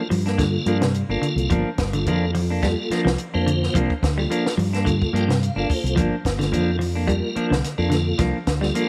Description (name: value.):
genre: afrobeat.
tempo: 108 BPM.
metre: 4/4.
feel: swing 54% on 16ths.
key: G minor.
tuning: A4 = 440 Hz.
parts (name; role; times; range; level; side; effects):
tonewheel organ; accompaniment; 0.0-8.9 s; Bb3 to G5; -30 LUFS; equal; chorus vibrato, fast rotary speaker.
semi-hollow electric guitar; arpeggios; 0.1-8.8 s; C3 to G3; -28 LUFS; equal; none.
fingered electric bass; bass; 0.1-8.7 s; G1 to G2; -26 LUFS; equal; none.
compact cocktail drum kit; drums; 0.1-8.9 s; hi-hat, kick drum, snare drum; -29 LUFS; equal; none.
clean electric guitar; stabs; 0.3-8.9 s; F3 to D4; -28 LUFS; equal; lush chorus.
room: light reverb, studio ambience.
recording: none.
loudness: -22 LUFS.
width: mono.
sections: 0.0-8.9 A section.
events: tonewheel organ fill 4.8-6.0.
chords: 0.0 Gm7.